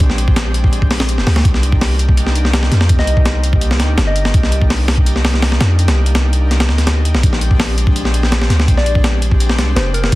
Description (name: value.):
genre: drum and bass, jungle.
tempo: 166 BPM.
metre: 4/4.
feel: straight.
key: C minor.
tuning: A4 = 439 Hz.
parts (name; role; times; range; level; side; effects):
airy breathy pad; sustained chords; 0.0-10.2 s; Ab3 to G4; -24 LUFS; equal; chorus.
long sustained 808-style bass; bass; 0.0-10.2 s; F1 to F2; -14 LUFS; equal; none.
breakbeat sampler-style drum kit; drums; 0.0-10.2 s; hi-hat, kick drum, snare drum; -14 LUFS; equal; none.
soft struck synth lead; melody; 3.0-4.6, 8.8-10.1 s; Bb4 to Eb5; -23 LUFS; left 1 dB; chorus, dub echo.
room: little or no reverb.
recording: dense, heavily limited modern master, vinyl crackle.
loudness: -11 LUFS.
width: side -18 dB against mid.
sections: 0.0-10.2 A section.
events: none.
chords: 0.0 Bb13; 1.4 Cm9; 7.2 Bb13.